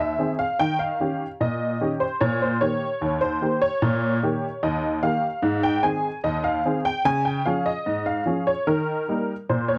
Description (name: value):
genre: ragtime piano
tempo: 74 BPM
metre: 2/4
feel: straight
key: unclear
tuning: A4 = 440 Hz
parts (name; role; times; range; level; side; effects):
- honky-tonk upright piano; solo; 0.0-9.8 s; Eb2 to Ab5; -24 LUFS; equal; none
room: light reverb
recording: worn, warbling old tape, cassette tape, warbly pitch drift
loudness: -24 LUFS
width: mono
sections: 0.0-9.8 A section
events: none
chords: 0.0 Ab; 0.6 Eb7; 5.4 Ab; 7.0 Db; 8.7 Eb